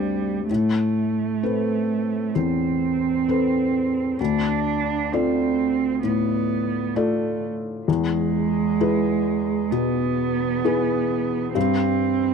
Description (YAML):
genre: neoclassical piano and strings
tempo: 65 BPM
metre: 4/4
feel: rubato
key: A minor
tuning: A4 = 440 Hz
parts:
  - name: muted cello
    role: second line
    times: 0.0-12.3 s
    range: G3 to D4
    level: -23 LUFS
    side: right 9 dB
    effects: none
  - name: felt-muted upright piano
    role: accompaniment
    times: 0.0-12.3 s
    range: D2 to D5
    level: -23 LUFS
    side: left 7 dB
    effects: none
room: little or no reverb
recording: dry, close 1970s-style studio recording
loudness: -20 LUFS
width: side -6 dB against mid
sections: 0.0-12.3 A section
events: none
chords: 0.5 Amadd9; 4.2 Dm; 7.9 E; 11.6 Gsus4